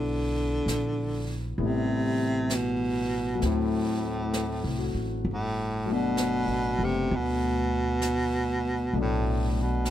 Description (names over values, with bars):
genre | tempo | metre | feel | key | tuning
jazz ballad | 65 BPM | 4/4 | swing 67% on 8ths | G major | A4 = 439 Hz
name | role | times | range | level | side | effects
breathy baritone saxophone | melody | 0.0-9.9 s | A2 to D3 | -28 LUFS | right 1 dB | none
warm concert grand piano | accompaniment | 0.0-9.9 s | F#3 to A4 | -32 LUFS | left 5 dB | none
upright bass | bass | 0.0-9.9 s | F#1 to D2 | -31 LUFS | right 1 dB | none
jazz brush drum kit | drums | 0.7-9.9 s | brushed snare drum, hi-hat, snare drum | -39 LUFS | right 2 dB | none
room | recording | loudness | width
little or no reverb | close, detailed microphones | -25 LUFS | side -12 dB against mid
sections
0.0-9.9 A section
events
none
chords
0.0 Esus2; 1.6 Am9; 3.4 D7; 5.3 Gmaj9